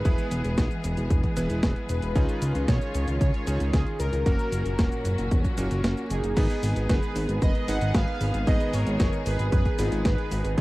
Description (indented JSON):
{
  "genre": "italo disco",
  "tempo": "114 BPM",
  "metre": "4/4",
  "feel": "straight",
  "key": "G# dorian from 6.4 s",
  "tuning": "A4 = 441 Hz",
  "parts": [
    { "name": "analog synth brass", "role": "melody", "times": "0.0-10.6 s", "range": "D#4 to F#5", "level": "-32 LUFS", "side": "right 1 dB", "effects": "chorus, tape echo" },
    { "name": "rich symphonic string section", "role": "sustained chords", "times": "0.0-10.6 s", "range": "A#2 to G#4", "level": "-33 LUFS", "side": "left 1 dB", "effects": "none" },
    { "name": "fat analog bass", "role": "bass", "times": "0.0-10.6 s", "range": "E1 to C#2", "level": "-27 LUFS", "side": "equal", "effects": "none" },
    { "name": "bright electric grand piano", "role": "stabs", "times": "0.1-10.6 s", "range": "A#3 to D#5", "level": "-34 LUFS", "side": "right 1 dB", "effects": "none" },
    { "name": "clean 12-bit digital drum machine", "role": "drums", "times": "0.1-10.6 s", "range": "cabasa, crash cymbal, hi-hat, snare drum", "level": "-31 LUFS", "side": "equal", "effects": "none" },
    { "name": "electronic kick drum", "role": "drums", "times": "0.1-10.6 s", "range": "none", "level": "-24 LUFS", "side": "equal", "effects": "overdrive" }
  ],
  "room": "little or no reverb",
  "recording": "dry, close 1970s-style studio recording, vinyl crackle",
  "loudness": "-23 LUFS",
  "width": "side -19 dB against mid",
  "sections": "0.0-6.4 A section; 6.4-10.6 B section",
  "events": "break 5.8-6.4",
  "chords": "0.1 E; 2.2 C#add9; 4.3 F#; 6.4 G#m",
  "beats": "| 0.05 0.58 1.10 1.63 | 2.16 2.68 3.21 3.73 | 4.26 4.79 5.31 5.84 | 6.37 6.89 7.42 7.95 | 8.47 9.00 9.52 10.05 | 10.58"
}